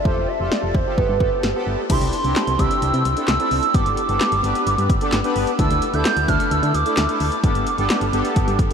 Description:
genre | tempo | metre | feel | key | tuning
synth-pop | 130 BPM | 4/4 | straight | C major | A4 = 440 Hz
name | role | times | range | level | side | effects
hollow clarinet-like synth lead | melody | 0.0-8.6 s | B4 to G6 | -22 LUFS | right 2 dB | chorus, phaser, diffuse ambient delay
analog synth brass | accompaniment | 0.1-8.7 s | A3 to B4 | -23 LUFS | equal | chorus
solid FM bass | bass | 0.1-8.7 s | F1 to D3 | -23 LUFS | equal | none
punchy analog drum machine | drums | 0.1-8.7 s | crash cymbal, handclaps, hi-hat, kick drum, snare drum | -22 LUFS | equal | none
room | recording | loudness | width
wet huge ambient reverb, RT60 7.5 s | dreamy mix soaked in reverb | -17 LUFS | side -7 dB against mid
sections
0.0-1.9 A section; 1.9-8.7 B section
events
none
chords
0.1 Fadd9; 1.0 Gadd9; 1.9 Cadd9; 3.7 Gadd9; 5.6 Dsus2; 7.4 Gadd9

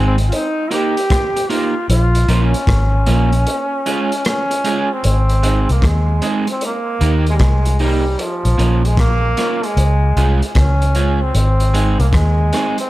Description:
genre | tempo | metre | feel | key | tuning
roots reggae | 76 BPM | 4/4 | swing 65% on 16ths | Ab major | A4 = 440 Hz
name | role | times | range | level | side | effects
bright trombone | melody | 0.0-12.9 s | F3 to G4 | -20 LUFS | equal | dub echo
electric guitar at the edge of break-up | accompaniment | 0.0-12.8 s | Ab3 to Bb4 | -22 LUFS | right 3 dB | dub echo
vintage muted fingered electric bass | bass | 0.0-12.5 s | Ab1 to Eb2 | -14 LUFS | equal | none
crunchy breakbeat drum kit | drums | 0.2-12.9 s | hi-hat, kick drum, rim click | -21 LUFS | equal | none
room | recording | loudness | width
small room ambience | echo-heavy mix | -13 LUFS | side -16 dB against mid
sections
0.0-5.0 A section; 5.0-12.9 B section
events
trombone solo 0.0-5.0; break 3.5-5.0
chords
0.3 Eb; 1.9 Bbm; 3.5 Db; 5.0 Ab; 6.6 Eb; 8.2 Bbm; 9.8 Db; 11.3 Ab

